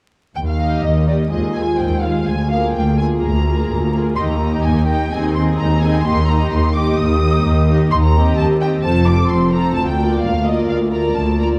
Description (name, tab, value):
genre	quick classical-period movement for symphony orchestra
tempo	128 BPM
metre	4/4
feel	rubato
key	Eb major, Bb major from 7.9 s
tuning	A4 = 440 Hz
part	muted studio violin section	melody	0.4-11.5 s	D5 to Eb6	-25 LUFS	equal	none
part	muted studio cello section	bass	0.4-11.6 s	D2 to F2	-22 LUFS	equal	none
part	muted studio double bass section	bass	0.4-11.6 s	F1 to Eb2	-21 LUFS	equal	none
part	muted studio violin section	second line	0.6-11.6 s	G4 to Eb5	-27 LUFS	equal	none
part	muted studio viola section	accompaniment	0.6-11.6 s	Ab3 to G4	-24 LUFS	equal	none
room	moderate scoring stage reverb, RT60 1.6 s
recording	dark, warm production, vinyl crackle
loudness	-17 LUFS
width	mono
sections	0.4-11.6 A section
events	none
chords	0.4 Eb; 1.3 Fm7/Eb; 2.3 Bb7/D; 4.2 Eb; 5.1 Ab/Eb; 6.1 Eb; 7.9 Cm/Eb; 8.8 F; 9.8 Bb/D